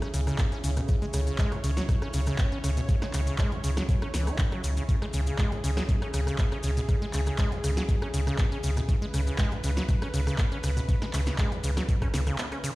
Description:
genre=acid house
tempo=120 BPM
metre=4/4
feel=straight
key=C# minor pentatonic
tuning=A4 = 440 Hz
part: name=warm analog pad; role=sustained chords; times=0.0-12.8 s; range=C#3 to C#5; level=-37 LUFS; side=right 1 dB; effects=chorus, sidechain pumping
part: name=acid bass, saw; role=riff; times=0.0-12.7 s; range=C#2 to E4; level=-32 LUFS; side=equal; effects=tube saturation, cassette tape, digital delay
part: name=punchy analog drum machine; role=drums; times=0.0-12.7 s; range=handclaps, hi-hat, rim click, snare drum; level=-36 LUFS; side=equal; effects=none
part: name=warm sub bass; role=bass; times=0.1-12.3 s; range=G#1 to C#2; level=-28 LUFS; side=equal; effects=sidechain pumping
part: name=maracas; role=percussion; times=0.1-12.7 s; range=none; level=-43 LUFS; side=left 4 dB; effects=none
part: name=electronic kick drum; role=drums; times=0.4-12.1 s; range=none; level=-26 LUFS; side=equal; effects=none
room=light reverb, digital ambience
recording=played on a big sound system in a bare room, stone room reverb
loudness=-25 LUFS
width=side -19 dB against mid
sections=0.0-12.8 A section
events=break 12.4-12.8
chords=0.0 C#m

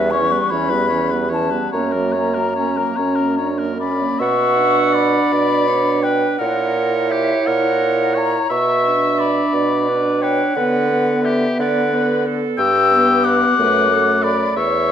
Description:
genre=classical, slow romantic movement for wind quintet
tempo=47-61 BPM (dotted quarters)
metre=6/8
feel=rubato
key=B minor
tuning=A4 = 439 Hz
part: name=mellow hollow silver concert flute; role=melody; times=0.0-14.9 s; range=E5 to E6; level=-20 LUFS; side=left 7 dB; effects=none
part: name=clear oboe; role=second line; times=0.0-14.9 s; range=G4 to G5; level=-22 LUFS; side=left 2 dB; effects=none
part: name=clear clarinet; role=accompaniment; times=0.0-14.9 s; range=A#3 to F#5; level=-23 LUFS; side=right 7 dB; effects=none
part: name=warm French horn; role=accompaniment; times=0.0-14.6 s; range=E3 to E4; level=-23 LUFS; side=right 1 dB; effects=none
part: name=warm bassoon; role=bass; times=0.0-14.9 s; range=E2 to D3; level=-20 LUFS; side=right 3 dB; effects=none
room=wet recital hall reverb, RT60 1.4 s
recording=dark, warm production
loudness=-15 LUFS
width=side -9 dB against mid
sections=0.0-4.2 A section; 4.2-14.9 B section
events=none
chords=0.0 C#m7b5/E; 1.8 F#; 4.2 Bm; 6.4 F#7/A#; 8.5 Bm; 10.5 Bm/D; 12.6 Em/G; 13.6 D/F#

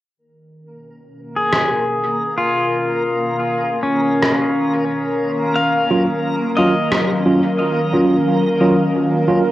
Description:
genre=ambient dub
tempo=89 BPM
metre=4/4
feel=swing 53% on 16ths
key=unclear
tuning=A4 = 442 Hz
part: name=airy breathy pad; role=sustained chords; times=0.2-9.5 s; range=Cb3 to F5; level=-21 LUFS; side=equal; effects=chorus, plate reverb
part: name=backwards swelling texture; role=texture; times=1.3-9.5 s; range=Bb3 to Bb4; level=-24 LUFS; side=left 1 dB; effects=built-in reverb, plate reverb
part: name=pedal steel guitar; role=arpeggios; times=1.4-8.6 s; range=Db4 to F5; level=-19 LUFS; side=left 1 dB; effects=low-pass filter, dub echo, plate reverb
part: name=electronic rim click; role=drums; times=1.5-7.1 s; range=none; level=-21 LUFS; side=equal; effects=low-pass filter on snare, low-pass filter on room, dub echo
part: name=tine electric piano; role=stabs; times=5.9-9.4 s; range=Gb3 to F4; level=-17 LUFS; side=right 1 dB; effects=fast stereo tremolo, dub echo, plate reverb
room=moderate studio reverb, RT60 0.6 s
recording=home recording on cassette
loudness=-15 LUFS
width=side -15 dB against mid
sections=0.2-9.5 A section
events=fade-in on analog synth pad 0.2-9.5; filter sweep on pedal steel guitar 0.2-9.5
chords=0.2 Db13; 5.6 Ebm9

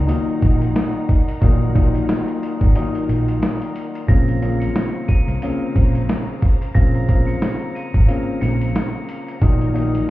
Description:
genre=hip hop, boom-bap hip-hop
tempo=90 BPM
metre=4/4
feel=swing 57% on 16ths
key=Bb minor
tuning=A4 = 440 Hz
part: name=clear studio string section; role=sustained chords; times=0.0-10.1 s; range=Db3 to Bb5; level=-34 LUFS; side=equal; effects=high-pass filter, low-pass filter
part: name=fingered electric bass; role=bass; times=0.0-10.0 s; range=Ab1 to C2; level=-18 LUFS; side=right 1 dB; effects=none
part: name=dark upright piano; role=accompaniment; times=0.1-10.1 s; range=Bb2 to Eb4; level=-23 LUFS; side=left 3 dB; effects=high-pass filter, low-pass filter
part: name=dusty soul sampler-style drum kit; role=drums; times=0.1-10.1 s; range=hi-hat, kick drum, snare drum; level=-18 LUFS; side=equal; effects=overdrive
part: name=glockenspiel with rubber mallets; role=melody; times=4.1-8.9 s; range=Bb6 to Eb7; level=-36 LUFS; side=right 1 dB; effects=high-pass filter, low-pass filter, ping-pong delay
room=studio ambience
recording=heard muffled through a wall, stone room reverb, EQ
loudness=-16 LUFS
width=side -16 dB against mid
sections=0.0-10.1 A section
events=none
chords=0.0 Ebm/Bb; 4.1 Bbmadd9; 9.4 Ebm/Bb

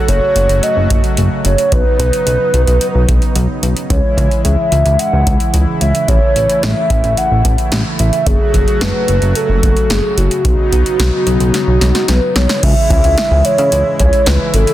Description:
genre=synth-pop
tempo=110 BPM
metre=4/4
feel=straight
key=C# minor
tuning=A4 = 442 Hz
part: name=hollow clarinet-like synth lead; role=melody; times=0.0-14.7 s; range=F#4 to F#5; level=-16 LUFS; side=right 1 dB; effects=chorus
part: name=brassy analog pad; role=sustained chords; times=0.0-14.7 s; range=C#3 to F#4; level=-20 LUFS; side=equal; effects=chorus
part: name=chorused synth bass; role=bass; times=0.1-14.7 s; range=F#1 to C#3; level=-13 LUFS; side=equal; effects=none
part: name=electro analog drum machine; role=drums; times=0.1-14.7 s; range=crash cymbal, hi-hat, kick drum, snare drum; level=-16 LUFS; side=equal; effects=none
room=light reverb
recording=dense, heavily limited modern master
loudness=-10 LUFS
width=side -14 dB against mid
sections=0.0-12.6 A section; 12.6-14.7 B section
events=drum fill 11.5-12.6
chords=0.0 F#m; 1.7 Badd9; 3.9 C#m; 6.1 A; 8.3 F#madd9; 10.4 Badd9; 12.6 C#m

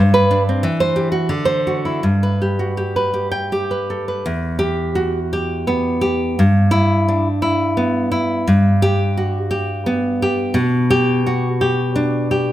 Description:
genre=romantic piece for solo classical guitar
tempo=79-94 BPM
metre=3/4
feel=rubato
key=G major, E minor from 4.3 s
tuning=A4 = 440 Hz
part: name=nylon-string guitar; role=solo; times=0.0-12.5 s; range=E2 to G5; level=-15 LUFS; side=equal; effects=none
room=moderate recital hall reverb, RT60 1.5 s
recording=none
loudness=-16 LUFS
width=side -13 dB against mid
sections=0.0-4.3 A section; 4.3-12.5 B section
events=none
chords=0.0 G; 0.7 C/E; 1.3 D7; 2.0 G; 4.3 Em; 6.4 Em/G; 8.5 G; 10.6 G/B

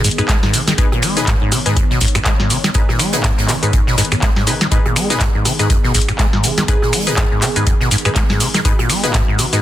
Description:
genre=acid house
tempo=122 BPM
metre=4/4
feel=swing 57% on 16ths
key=G# minor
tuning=A4 = 440 Hz
part: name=warm analog pad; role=sustained chords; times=0.0-9.6 s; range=D#3 to C#5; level=-25 LUFS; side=right 1 dB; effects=chorus, sidechain pumping
part: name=deep acid bass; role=riff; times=0.0-9.6 s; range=F#2 to G#3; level=-18 LUFS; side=equal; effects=tube saturation, wide subtle chorus, sidechain pumping, tape echo
part: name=booming analog drum machine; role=drums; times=0.0-9.6 s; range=finger snaps, handclaps, hi-hat, rim click, shaker, snare drum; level=-18 LUFS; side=left 1 dB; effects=small room ambience
part: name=natural country drum kit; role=drums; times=0.0-9.6 s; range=hi-hat, snare drum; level=-27 LUFS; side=right 3 dB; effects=sidechain pumping on hats, high-pass filter on hats, small room ambience, high-pass filter on snare, high-pass filter on room
part: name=filtered dub chord stab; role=stabs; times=0.2-9.6 s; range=D#4 to B4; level=-24 LUFS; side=left 4 dB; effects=chorus, tape echo
part: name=electronic kick drum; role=drums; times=0.3-9.3 s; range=none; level=-17 LUFS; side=equal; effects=small room ambience
part: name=soft struck synth lead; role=melody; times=6.7-7.1 s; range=G#4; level=-27 LUFS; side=equal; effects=chorus, ping-pong delay
room=light reverb, digital ambience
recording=dense, heavily limited modern master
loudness=-13 LUFS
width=side -13 dB against mid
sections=0.0-9.6 A section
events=none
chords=0.0 G#m

